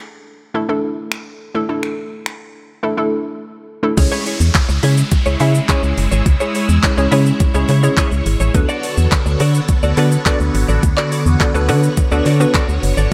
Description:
dance-pop; 105 BPM; 4/4; straight; B dorian; A4 = 438 Hz
hollow square pluck; accompaniment; 0.5-12.8 s; G#3 to E5; -22 LUFS; equal; chorus, sidechain pumping
pop drum kit; drums; 1.1-13.1 s; crash cymbal, finger snaps, handclaps, hi-hat, kick drum, shaker; -20 LUFS; equal; overdrive
phased string machine; sustained chords; 4.0-13.1 s; D3 to C#5; -25 LUFS; equal; ensemble chorus, phaser, sidechain pumping
direct-recorded clean electric guitar; riff; 4.0-13.1 s; E4 to D5; -26 LUFS; equal; ensemble chorus
organ-like FM bass; bass; 4.0-13.1 s; F#1 to D3; -17 LUFS; equal; sidechain pumping
downlifter; sound effects; 4.0-8.5 s; -31 LUFS; equal
group handclap; percussion; 4.5-12.7 s; barely audible
light reverb, digital ambience; -16 LUFS; mono
0.0-4.0 A section; 4.0-13.1 B section
break 3.4-4.0
0.0 Asus4; 4.0 C#m; 8.5 Bm7
0.55 1.12 | 1.69 2.26 2.83 3.40 | 3.97 4.55 5.12 5.69 | 6.26 6.83 7.40 7.97 | 8.55 9.12 9.69 10.26 | 10.83 11.40 11.97 12.55 | 13.12

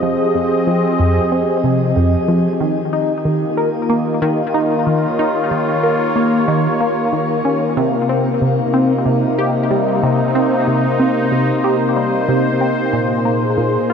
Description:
ambient, sequencer-driven space music; 93 BPM; 4/4; straight; A4 = 442 Hz
sweeping resonant pad; sustained chords; 0.0-13.9 s; Bb2 to Eb5; -16 LUFS; left 1 dB; wide subtle chorus, shimmer reverb
tight sequenced synth; riff; 0.0-13.9 s; F2 to Bb4; -18 LUFS; equal; chorus, ping-pong delay, shimmer reverb
wet plate reverb, RT60 3.1 s; echo-heavy mix; -14 LUFS; side -6 dB against mid
0.0-13.9 A section
0.0 Fm7; 2.6 Eb7; 7.8 Cm7; 12.9 Bb7(no3)
| 0.03 0.67 1.32 1.96 | 2.61 3.25 3.90 4.54 | 5.19 5.83 6.48 7.12 | 7.77 8.41 9.06 9.70 | 10.35 10.99 11.64 12.28 | 12.93 13.57

